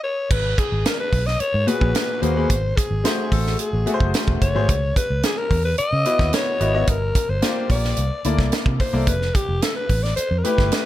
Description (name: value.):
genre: polished 1980s jazz-funk pop.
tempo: 110 BPM.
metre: 4/4.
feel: straight.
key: unclear.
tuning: A4 = 440 Hz.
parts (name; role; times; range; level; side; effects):
breathy alto saxophone; melody; 0.0-10.9 s; G4 to D#5; -24 LUFS; left 2 dB; none.
vintage muted fingered electric bass; bass; 0.3-10.7 s; E1 to C#3; -22 LUFS; equal; none.
tight funk drum kit; drums; 0.3-10.9 s; crash cymbal, hi-hat, kick drum, snare drum; -22 LUFS; right 1 dB; gated reverb.
clear grand piano; accompaniment; 1.7-10.9 s; A#2 to D#5; -24 LUFS; left 2 dB; analog chorus.
room: little or no reverb.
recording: none.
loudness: -18 LUFS.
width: side -14 dB against mid.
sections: 0.3-10.9 A section.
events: stop 0.0-0.3.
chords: 0.3 G#m9; 2.5 G#7b9; 4.7 C#m11; 6.9 Gm7; 8.0 C13; 9.1 Fmaj9#11.